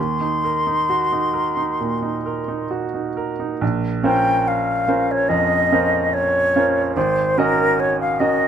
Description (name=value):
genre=classical, impressionist duo for flute and grand piano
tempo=61-75 BPM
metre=4/4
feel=rubato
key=Bb minor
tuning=A4 = 438 Hz
part: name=mellow silver concert flute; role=melody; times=0.0-8.5 s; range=Bb4 to C6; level=-19 LUFS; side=left 2 dB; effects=none
part: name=clear baby grand piano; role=accompaniment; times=0.0-8.5 s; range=Ab1 to Eb5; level=-21 LUFS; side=right 4 dB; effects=none
room=light reverb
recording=none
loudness=-17 LUFS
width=side -8 dB against mid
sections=0.0-3.6 A section; 3.6-8.5 B section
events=none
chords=0.0 Ebm6; 3.6 Bbmadd9; 7.0 Ab9sus4